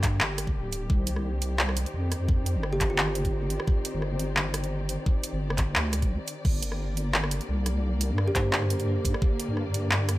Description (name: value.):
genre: half-time drum and bass.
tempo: 173 BPM.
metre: 4/4.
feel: swing 54% on 16ths, half-time.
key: G minor.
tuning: A4 = 440 Hz.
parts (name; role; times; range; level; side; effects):
dark studio string section; sustained chords; 0.0-10.2 s; D3 to D5; -35 LUFS; left 2 dB; sidechain pumping.
deep soft wobble bass; bass; 0.0-10.2 s; D1 to G2; -28 LUFS; equal; chorus.
drum and bass drum kit; drums; 0.0-10.2 s; crash cymbal, handclaps, hi-hat, rim click; -29 LUFS; equal; overdrive.
electronic kick drum; drums; 0.0-9.3 s; none; -25 LUFS; equal; none.
kalimba; melody; 2.7-3.2, 8.3-8.7 s; F4 to C5; -34 LUFS; right 2 dB; tape echo.
room: little or no reverb.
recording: none.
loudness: -25 LUFS.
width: side -17 dB against mid.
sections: 0.0-6.4 A section; 6.4-10.2 A section.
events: drop 0.0-6.4, 6.4-10.2; break 6.1-6.4.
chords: 0.0 Gm; 0.9 Cmadd9; 6.4 Gm.